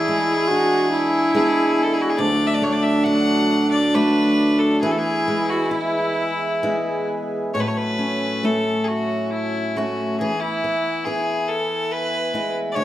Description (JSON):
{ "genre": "celtic folk, Celtic slow air", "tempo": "64-71 BPM", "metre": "3/4", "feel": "rubato", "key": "unclear", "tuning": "A4 = 440 Hz", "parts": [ { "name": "bright fiddle", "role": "melody", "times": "0.0-12.8 s", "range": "E4 to F#5", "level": "-23 LUFS", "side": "left 1 dB", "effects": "none" }, { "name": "clear viola", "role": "second line", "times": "0.0-7.1 s", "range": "D4 to F#4", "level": "-21 LUFS", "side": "right 1 dB", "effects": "none" }, { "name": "picked steel-string acoustic guitar", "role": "accompaniment", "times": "0.0-12.8 s", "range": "D2 to F#4", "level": "-23 LUFS", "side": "equal", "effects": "none" }, { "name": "hand-pumped harmonium", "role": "sustained chords", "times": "0.0-12.8 s", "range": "E3 to G#5", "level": "-29 LUFS", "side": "equal", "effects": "none" } ], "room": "wet recital hall reverb, RT60 1.4 s", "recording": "dark, warm production", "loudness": "-18 LUFS", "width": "side -13 dB against mid", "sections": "0.0-7.5 A section; 7.5-12.8 B section", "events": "none", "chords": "0.0 E7; 2.2 D; 4.8 E; 7.5 A6; 10.2 E", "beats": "0.50 1.35 | 2.20 3.06 3.94 | 4.82 5.71 6.62 | 7.54 8.44 9.33 | 10.21 11.07 11.91 | 12.76" }